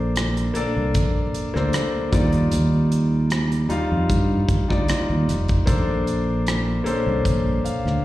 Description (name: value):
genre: lush 1970s-style soul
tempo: 76 BPM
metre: 4/4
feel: swing 54% on 16ths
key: Bb major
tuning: A4 = 440 Hz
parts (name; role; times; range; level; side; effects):
- clear grand piano; accompaniment; 0.0-8.0 s; Gb3 to F5; -24 LUFS; left 1 dB; plate reverb, slapback echo
- fingered electric bass; bass; 0.0-8.0 s; F1 to G2; -21 LUFS; equal; none
- modern studio drum kit; drums; 0.2-8.0 s; hi-hat, kick drum, rim click; -24 LUFS; equal; none
room: light reverb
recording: live gig heard through the venue's PA, recital hall reverb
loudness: -19 LUFS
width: side -15 dB against mid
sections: 0.0-8.0 A section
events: none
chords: 0.0 Bbmaj9; 2.1 Ebmaj9; 5.7 Bbmaj9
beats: 0.16 0.95 1.74 | 2.52 3.31 4.10 4.89 | 5.67 6.46 7.25 8.03